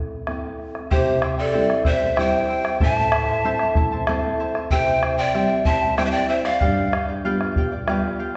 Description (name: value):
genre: andean folk, Andean ensemble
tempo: 95 BPM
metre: 3/4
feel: straight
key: unclear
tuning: A4 = 439 Hz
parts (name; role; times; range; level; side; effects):
- nylon-string guitar; accompaniment; 0.0-8.4 s; G2 to F4; -29 LUFS; equal; none
- bombo; percussion; 0.3-8.1 s; none; -26 LUFS; equal; none
- breathy mellow polished pan flute; melody; 0.9-7.0 s; C5 to A5; -26 LUFS; equal; none
- breathy bright large pan pipes; second line; 0.9-7.0 s; G4 to E5; -29 LUFS; equal; none
- charango; accompaniment; 0.9-8.4 s; E4 to A5; -28 LUFS; equal; none
room: wet recital hall reverb, RT60 1.6 s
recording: recorded in a church or concert hall, nothing above 8.0 kHz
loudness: -21 LUFS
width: mono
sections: 0.9-8.4 A section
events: none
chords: 0.0 Am; 0.9 C; 2.8 Am; 4.7 C; 6.6 G7